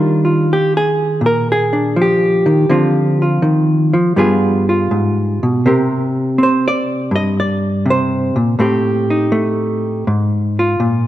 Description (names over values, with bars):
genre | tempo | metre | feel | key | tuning
solo jazz | 81 BPM | 4/4 | swing 69% on 8ths | Eb major | A4 = 440 Hz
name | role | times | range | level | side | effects
hollow-body jazz guitar | solo | 0.0-11.1 s | G2 to Eb5 | -13 LUFS | equal | none
room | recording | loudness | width
moderate concert hall reverb, RT60 1.9 s | close, detailed microphones | -13 LUFS | side -13 dB against mid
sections
0.0-11.1 A section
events
hollow-body jazz guitar solo 0.0-11.1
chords
0.0 Ebmaj9; 2.7 Dm7; 4.2 G7b9; 5.6 C5; 8.6 Am7b5; 10.1 Absus2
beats
0.47 1.21 1.95 | 2.69 3.43 4.17 4.90 | 5.64 6.38 7.12 7.86 | 8.59 9.33 10.07 10.81